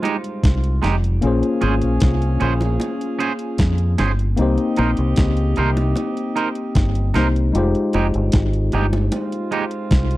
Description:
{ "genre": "lovers rock reggae", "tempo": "76 BPM", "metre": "4/4", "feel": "straight", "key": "Bb dorian", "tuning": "A4 = 440 Hz", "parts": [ { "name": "mellow horn section", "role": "second line", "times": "0.0-10.2 s", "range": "Ab3 to Ab4", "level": "-29 LUFS", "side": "right 3 dB", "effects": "none" }, { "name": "tine electric piano", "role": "accompaniment", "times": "0.0-10.2 s", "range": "G3 to C5", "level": "-23 LUFS", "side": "left 3 dB", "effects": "overdrive" }, { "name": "twangy electric guitar", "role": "stabs", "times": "0.0-9.6 s", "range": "Ab3 to C5", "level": "-22 LUFS", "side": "right 6 dB", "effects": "none" }, { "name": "bongos", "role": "percussion", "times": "0.0-9.3 s", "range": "none", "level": "-29 LUFS", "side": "right 1 dB", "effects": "none" }, { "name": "crisp 8-bit digital drum machine", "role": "drums", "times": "0.1-10.2 s", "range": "hi-hat, kick drum, snare drum", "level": "-20 LUFS", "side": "equal", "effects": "overdrive, slapback echo" }, { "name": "deep dub fingered electric bass", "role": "bass", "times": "0.4-10.2 s", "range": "F1 to F2", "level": "-19 LUFS", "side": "equal", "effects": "none" } ], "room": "little or no reverb", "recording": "dry, close 1970s-style studio recording", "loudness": "-17 LUFS", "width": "side -17 dB against mid", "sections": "0.0-10.2 A section", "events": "none", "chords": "0.0 Fm9; 1.2 Bbm9; 4.4 Cm7; 7.5 Fm9" }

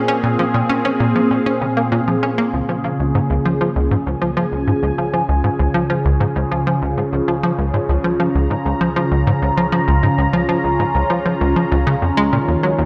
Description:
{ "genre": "ambient, sequencer-driven space music", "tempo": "98 BPM", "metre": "4/4", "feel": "straight", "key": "Db major", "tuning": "A4 = 442 Hz", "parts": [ { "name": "phased analog pad", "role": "sustained chords", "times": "0.0-12.9 s", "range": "Bb2 to Bb5", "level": "-21 LUFS", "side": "equal", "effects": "phaser, chorus" }, { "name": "plucky analog bass", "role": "riff", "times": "0.0-12.9 s", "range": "Db2 to Db4", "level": "-20 LUFS", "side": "equal", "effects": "analog chorus, analog delay" }, { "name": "bubbling stepped-filter texture", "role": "texture", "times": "0.0-2.5 s", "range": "F4 to F5", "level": "-36 LUFS", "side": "equal", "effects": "none" } ], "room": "wet plate reverb, RT60 2.4 s", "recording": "none", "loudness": "-18 LUFS", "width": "mono", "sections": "0.0-2.5 A section; 2.5-12.9 B section", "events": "none", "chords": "0.0 Bbm7; 2.5 Db; 12.3 Ebm7" }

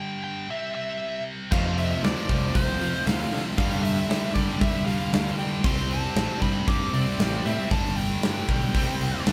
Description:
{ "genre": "quiet-loud alternative rock", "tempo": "116 BPM", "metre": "4/4", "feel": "straight", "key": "unclear", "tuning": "A4 = 440 Hz", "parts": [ { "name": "nasal lead guitar with a parked wah", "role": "melody", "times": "0.0-9.2 s", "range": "C5 to D6", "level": "-34 LUFS", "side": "equal", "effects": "overdrive" }, { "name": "scooped high-gain guitar", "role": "riff", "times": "0.0-9.3 s", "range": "F2 to D4", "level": "-36 LUFS", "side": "equal", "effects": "distortion" }, { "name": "cranked stack guitar", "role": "riff", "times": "1.5-9.3 s", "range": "F2 to D4", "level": "-33 LUFS", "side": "equal", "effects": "overdrive, spring reverb" }, { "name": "heavy high-gain guitar", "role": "riff", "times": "1.5-9.3 s", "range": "F2 to D4", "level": "-36 LUFS", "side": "equal", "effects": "distortion" }, { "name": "growling picked electric bass", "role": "bass", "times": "1.5-9.3 s", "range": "G1 to G3", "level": "-31 LUFS", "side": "equal", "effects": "overdrive" }, { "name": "huge arena drum kit", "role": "drums", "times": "1.5-9.3 s", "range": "crash cymbal, hi-hat, kick drum, snare drum", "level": "-29 LUFS", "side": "equal", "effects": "none" } ], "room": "light reverb", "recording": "band playing live in one room", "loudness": "-25 LUFS", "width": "mono", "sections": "0.0-9.3 A section", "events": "none", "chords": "0.5 C; 1.5 F5; 3.6 G5; 5.6 C5; 7.7 G; 8.7 C5" }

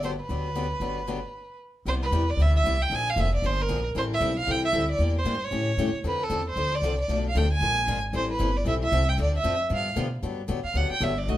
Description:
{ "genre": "acoustic string swing (jazz manouche)", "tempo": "230 BPM", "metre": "4/4", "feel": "swing 56% on 8ths", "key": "C major", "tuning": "A4 = 440 Hz", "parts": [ { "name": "rich violin", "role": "melody", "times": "0.0-11.4 s", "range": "A4 to Ab5", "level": "-27 LUFS", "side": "right 2 dB", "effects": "none" }, { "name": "picked steel-string acoustic guitar", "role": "accompaniment", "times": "0.0-11.4 s", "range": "B2 to Bb4", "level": "-31 LUFS", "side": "left 3 dB", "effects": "none" }, { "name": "upright bass", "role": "bass", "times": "0.0-11.4 s", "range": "F1 to B2", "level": "-27 LUFS", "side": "equal", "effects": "none" } ], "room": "moderate studio reverb, RT60 0.8 s", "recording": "band playing live in one room", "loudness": "-23 LUFS", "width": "side -14 dB against mid", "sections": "0.0-1.9 A section; 1.9-10.2 B section; 10.2-11.4 C section", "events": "stop 1.3-1.9; violin solo 10.2-11.4", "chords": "0.0 Gmaj7; 1.9 Cmaj7; 2.9 Bb6; 3.9 Am9; 5.0 Em7b5; 5.5 A7; 6.0 Dm7; 7.1 Bm7b5; 7.6 Bb7; 8.1 Am9; 9.2 Dm9; 9.7 G7; 10.2 Gmaj7" }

